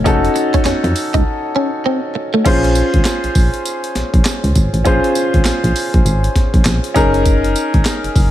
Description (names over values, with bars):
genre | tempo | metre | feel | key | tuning
R&B, new jack swing | 100 BPM | 4/4 | swing 62% on 16ths | Bb minor | A4 = 440 Hz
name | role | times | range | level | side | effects
clear baby grand piano | accompaniment | 0.0-8.3 s | Db4 to C5 | -17 LUFS | left 1 dB | none
direct-recorded clean electric guitar | riff | 0.0-2.4 s | A3 to Eb4 | -19 LUFS | right 1 dB | wide subtle chorus
solid FM bass | bass | 0.0-8.3 s | F1 to F2 | -16 LUFS | equal | none
breakbeat sampler-style drum kit | drums | 0.1-8.3 s | crash cymbal, handclaps, hi-hat, kick drum, snare drum, tambourine | -16 LUFS | equal | none
room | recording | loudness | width
digital ambience | none | -12 LUFS | side -13 dB against mid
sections
0.0-2.5 A section; 2.5-8.3 B section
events
break 1.3-2.5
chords
0.0 F7b9b13; 2.5 Bbm7; 7.0 Gb6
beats
| 0.06 0.66 1.26 1.86 | 2.46 3.06 3.66 4.26 | 4.86 5.46 6.06 6.66 | 7.26 7.86